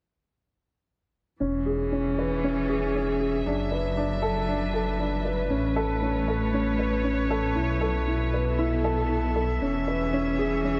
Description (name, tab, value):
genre	electronica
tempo	117 BPM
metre	4/4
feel	straight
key	E mixolydian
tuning	A4 = 440 Hz
part	dark string quartet	sustained chords	1.4-10.8 s	A2 to E5	-32 LUFS	equal	none
part	dark baby grand piano	riff	1.4-10.8 s	C#4 to B4	-29 LUFS	equal	low-pass filter, delay
part	dark detuned saw bass	bass	1.4-10.8 s	E1 to B1	-32 LUFS	equal	none
room	moderate huge ambient reverb, RT60 4.5 s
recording	none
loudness	-26 LUFS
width	mono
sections	1.4-10.8 A section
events	filter sweep on grand piano 1.4-10.8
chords	1.4 E6; 3.5 D6/F#; 5.5 Aadd9; 7.6 B7sus4; 9.6 E6